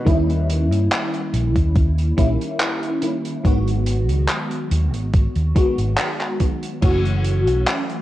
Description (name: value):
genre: vaporwave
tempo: 71 BPM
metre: 4/4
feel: straight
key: unclear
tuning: A4 = 439 Hz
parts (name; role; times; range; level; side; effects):
- FM electric piano with soft pad layer; accompaniment; 0.0-8.0 s; D#3 to F#4; -23 LUFS; left 1 dB; phaser, ensemble chorus, analog delay
- fingered electric bass; bass; 0.1-7.6 s; F#1 to G2; -19 LUFS; equal; none
- big rock drum kit; drums; 0.1-8.0 s; crash cymbal, handclaps, hi-hat; -25 LUFS; equal; vintage 12-bit sampler grit, gated reverb
- electronic kick drum; drums; 0.1-7.0 s; none; -17 LUFS; equal; overdrive, vintage 12-bit sampler grit
room: light reverb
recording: cassette tape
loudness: -17 LUFS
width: side -14 dB against mid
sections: 0.0-8.0 A section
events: none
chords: 0.1 D#7b9; 3.4 G#m7; 6.8 F#m7